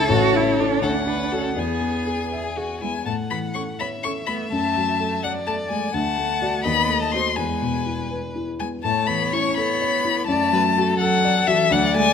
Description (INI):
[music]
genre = quick classical-period movement for piano quartet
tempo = 83 BPM (dotted quarters)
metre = 6/8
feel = rubato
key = A major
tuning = A4 = 440 Hz
[part]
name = warm violin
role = melody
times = 0.0-12.1 s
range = C#5 to C#6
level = -23 LUFS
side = left 7 dB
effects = none
[part]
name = rich cello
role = second line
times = 0.0-12.1 s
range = E3 to F#4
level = -27 LUFS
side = right 7 dB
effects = none
[part]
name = rich violin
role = second line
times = 0.0-12.1 s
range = E4 to F#5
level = -28 LUFS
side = left 3 dB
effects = none
[part]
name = dark baby grand piano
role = accompaniment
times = 0.0-12.1 s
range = A1 to E5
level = -24 LUFS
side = left 1 dB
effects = none
[sound]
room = moderate concert hall reverb, RT60 2.2 s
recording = close, detailed microphones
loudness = -19 LUFS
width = side -7 dB against mid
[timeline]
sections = 0.0-3.1 A section; 3.1-12.1 B section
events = none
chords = 0.1 A; 0.8 D; 1.6 E; 3.1 A; 4.5 D/F#; 5.9 D; 6.7 D#dim7; 7.4 E; 8.8 A; 10.3 D/F#